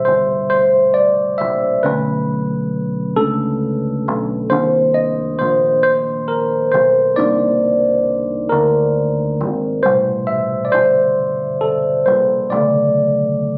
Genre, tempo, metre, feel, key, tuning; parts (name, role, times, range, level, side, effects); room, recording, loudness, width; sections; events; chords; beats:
slow six-eight R&B; 45 BPM (dotted quarters); 6/8; straight; A4 = 440 Hz
tine electric piano; accompaniment; 0.0-13.6 s; B2 to E5; -17 LUFS; equal; phaser
deep dub picked electric bass; bass; 0.0-13.6 s; G1 to D2; -26 LUFS; equal
light reverb, digital ambience; recorded on a phone in the room, studio reverb, compression; -16 LUFS; mono
0.0-13.6 A section
tine electric piano solo 0.0-13.6
0.0 Am9 (rootless); 1.8 Bm9; 4.5 Cm9; 9.8 Am9; 12.5 Bm9
0.50 | 1.83 3.17 | 4.50 5.83 | 7.17 8.50 | 9.83 11.17 | 12.50